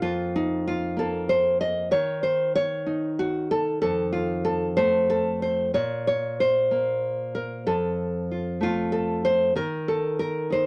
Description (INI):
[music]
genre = folk, solo fingerstyle acoustic guitar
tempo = 63 BPM (dotted quarters)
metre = 6/8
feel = rubato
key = unclear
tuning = A4 = 441 Hz
[part]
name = nylon-string guitar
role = solo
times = 0.0-10.7 s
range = F2 to Eb5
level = -25 LUFS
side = equal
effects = none
[sound]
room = light reverb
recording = none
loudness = -25 LUFS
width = mono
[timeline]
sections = 0.0-10.7 A section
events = none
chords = 0.0 Fsus4; 1.9 N.C.; 3.8 F7; 5.7 N.C.; 7.7 F; 9.6 N.C.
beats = | 0.01 0.97 | 1.92 2.86 | 3.81 4.77 | 5.73 6.70 | 7.66 8.61 | 9.56 10.50